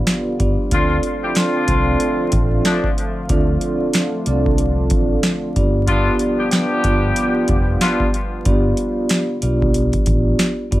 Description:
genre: hip hop, boom-bap hip-hop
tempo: 93 BPM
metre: 4/4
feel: swing 57% on 16ths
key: unclear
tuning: A4 = 440 Hz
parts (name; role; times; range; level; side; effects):
- vibraphone with soft mallets; accompaniment; 0.0-10.8 s; B3 to D5; -20 LUFS; right 1 dB; high-pass filter, low-pass filter
- dark analog pad; sustained chords; 0.0-10.8 s; D3 to F4; -28 LUFS; equal; chorus, high-pass filter, low-pass filter
- booming analog drum machine; drums; 0.1-10.8 s; hi-hat, kick drum, snare drum; -20 LUFS; equal; none
- finger snaps; percussion; 0.1-10.6 s; none; -33 LUFS; right 10 dB; none
- fingered electric bass; bass; 0.4-10.8 s; F1 to D2; -20 LUFS; equal; none
- warm horn section; stabs; 0.7-8.1 s; F3 to G4; -22 LUFS; left 2 dB; high-pass filter, low-pass filter, analog delay
room: light reverb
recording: vinyl crackle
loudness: -15 LUFS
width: side -16 dB against mid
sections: 0.0-10.8 A section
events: none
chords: 0.0 G7; 0.7 Dm7; 5.6 G7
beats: 0.07 | 0.72 1.36 2.01 2.65 | 3.30 3.94 4.59 5.23 | 5.88 6.52 7.17 7.81 | 8.46 9.10 9.75 10.39

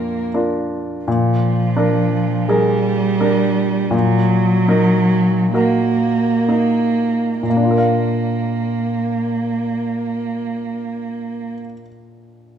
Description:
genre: classical, slow romantic movement for piano trio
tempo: 30-42 BPM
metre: 4/4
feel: rubato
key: Bb major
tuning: A4 = 440 Hz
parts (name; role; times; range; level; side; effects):
- rich cello; second line; 0.0-11.5 s; F3 to Bb3; -18 LUFS; right 2 dB; none
- clear baby grand piano; accompaniment; 0.0-12.6 s; F2 to F5; -19 LUFS; left 1 dB; none
room: wet recital hall reverb, RT60 1.5 s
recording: recorded in a church or concert hall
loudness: -15 LUFS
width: side -8 dB against mid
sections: 0.0-1.1 A section; 1.1-7.4 B section; 7.4-12.6 C section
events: slowing down 0.0-7.4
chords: 0.0 Bb; 1.1 Bb7; 3.9 Ebm/Bb; 7.4 Bb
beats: | 1.06 2.49 3.92 5.56 | 7.44 9.19 10.91

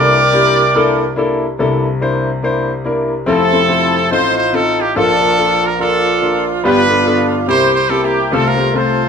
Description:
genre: uptempo gospel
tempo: 143 BPM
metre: 4/4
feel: swing 60% on 8ths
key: unclear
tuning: A4 = 441 Hz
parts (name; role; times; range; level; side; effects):
- clear horn section; melody; 0.0-9.1 s; Bb3 to D5; -13 LUFS; right 1 dB; none
- warm grand piano; accompaniment; 0.0-9.1 s; F1 to C5; -15 LUFS; left 2 dB; none
room: moderate large studio reverb, RT60 0.9 s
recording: band playing live in one room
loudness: -11 LUFS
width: side -6 dB against mid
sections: 0.0-1.6 A section; 1.6-3.3 B section; 3.3-9.1 C section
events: none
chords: 0.0 C13; 3.3 Fmaj7; 4.1 F7/A; 5.0 Bbmaj7; 6.6 G7; 7.5 C7; 8.3 F/C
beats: 0.33 0.75 1.17 | 1.59 2.01 2.43 2.85 | 3.27 3.69 4.11 4.53 | 4.95 5.37 5.79 6.21 | 6.63 7.05 7.47 7.90 | 8.32 8.74

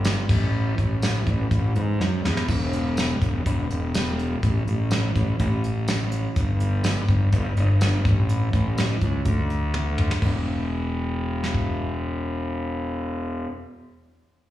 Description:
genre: classic rock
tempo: 124 BPM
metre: 4/4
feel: straight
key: unclear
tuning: A4 = 440 Hz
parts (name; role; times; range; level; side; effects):
- fuzz fingered electric bass; bass; 0.0-13.5 s; E1 to G#2; -22 LUFS; equal; overdrive
- soft brush drum kit; drums; 0.0-11.7 s; crash cymbal, hi-hat, kick drum, snare drum, tambourine, toms; -25 LUFS; equal; none
room: little or no reverb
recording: live gig heard through the venue's PA, recital hall reverb, small room ambience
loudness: -21 LUFS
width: side -14 dB against mid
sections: 0.0-10.2 A section; 10.2-14.1 B section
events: drum fill 2.0-2.5, 9.7-10.2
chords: none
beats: 0.06 | 0.54 1.03 1.52 2.01 | 2.49 2.98 3.46 3.95 | 4.43 4.92 5.40 5.88 | 6.37 6.85 7.33 7.81 | 8.29 8.78 9.26 9.74 | 10.22 10.70 11.18 11.67 | 12.15 12.63 13.11

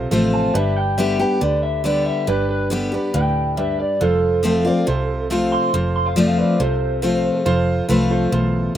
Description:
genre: honky-tonk and classic country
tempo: 139 BPM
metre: 4/4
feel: straight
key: unclear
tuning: A4 = 440 Hz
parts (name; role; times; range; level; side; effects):
- clear upright piano; accompaniment; 0.0-8.7 s; D4 to D5; -24 LUFS; right 5 dB; none
- picked steel-string acoustic guitar; accompaniment; 0.0-8.8 s; E2 to G4; -20 LUFS; left 3 dB; none
- vintage muted fingered electric bass; bass; 0.0-8.8 s; F1 to D2; -23 LUFS; right 1 dB; none
- electric guitar through a small old amp; melody; 0.3-7.4 s; A4 to C6; -22 LUFS; equal; slapback echo
room: little or no reverb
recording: recorded outdoors, with no room sound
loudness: -16 LUFS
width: side -11 dB against mid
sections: 0.0-8.8 A section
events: clean electric guitar solo 0.0-8.8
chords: 0.0 F; 0.6 G; 4.0 F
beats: 0.12 | 0.55 0.98 1.42 1.85 | 2.28 2.71 3.14 3.58 | 4.01 4.44 4.87 5.30 | 5.74 6.17 6.60 7.03 | 7.46 7.89 8.32 8.76

